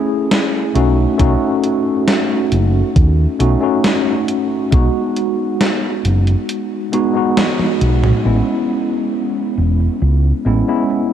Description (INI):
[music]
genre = vaporwave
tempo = 68 BPM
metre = 4/4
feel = straight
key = unclear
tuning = A4 = 439 Hz
[part]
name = tine electric piano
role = accompaniment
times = 0.0-11.1 s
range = G#3 to G#4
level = -16 LUFS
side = equal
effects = medium stereo tremolo, wide subtle chorus, tape echo
[part]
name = gated 80s digital drum machine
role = drums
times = 0.3-11.1 s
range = crash cymbal, hi-hat, snare drum, toms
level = -19 LUFS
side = equal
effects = gated reverb, gated reverb snare, low-pass filter on hats, low-pass filter on snare, low-pass filter on toms, low-pass filter on cymbals
[part]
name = fingered electric bass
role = bass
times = 0.8-10.6 s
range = E1 to D#2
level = -14 LUFS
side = equal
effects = none
[part]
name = electronic kick drum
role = drums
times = 1.2-4.9 s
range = none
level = -13 LUFS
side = equal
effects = none
[sound]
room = light reverb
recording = none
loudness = -13 LUFS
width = side -9 dB against mid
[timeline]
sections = 0.0-8.3 A section; 8.3-11.1 B section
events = kick drops out 6.5-8.3; drum fill 7.4-8.3; band accent 7.4-7.8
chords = 0.0 F#m9 (rootless); 0.8 B9; 4.7 B6; 8.3 Amaj9 (rootless)